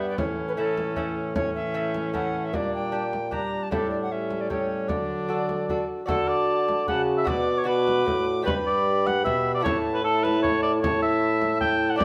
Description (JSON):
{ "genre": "classical, renaissance-style consort dance", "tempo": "152 BPM", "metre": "3/4", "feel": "straight", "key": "unclear", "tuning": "A4 = 440 Hz", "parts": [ { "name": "alto recorder", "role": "melody", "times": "0.0-12.0 s", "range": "A4 to D6", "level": "-34 LUFS", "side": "equal", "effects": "none" }, { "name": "warm cor anglais", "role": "second line", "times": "0.0-12.0 s", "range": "B3 to G5", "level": "-30 LUFS", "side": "equal", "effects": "none" }, { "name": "lute", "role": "accompaniment", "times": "0.0-12.0 s", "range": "G2 to D5", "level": "-36 LUFS", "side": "equal", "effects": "none" }, { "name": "mellow trombone", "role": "accompaniment", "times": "0.0-12.0 s", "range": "E3 to G4", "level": "-32 LUFS", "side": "equal", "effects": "none" }, { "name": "dark bassoon", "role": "bass", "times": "0.0-12.0 s", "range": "G2 to D3", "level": "-31 LUFS", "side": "equal", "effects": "none" }, { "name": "frame drum", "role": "percussion", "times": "0.2-12.0 s", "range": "none", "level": "-36 LUFS", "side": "equal", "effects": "none" } ], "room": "wet stone room reverb, RT60 1.2 s", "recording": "none", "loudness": "-25 LUFS", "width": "mono", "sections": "0.0-6.1 A section; 6.1-12.0 A section", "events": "none", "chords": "0.2 A; 2.5 Gm/Bb; 3.7 A7sus4; 4.1 A7; 4.9 D; 7.3 Bm; 8.5 G; 9.6 A5" }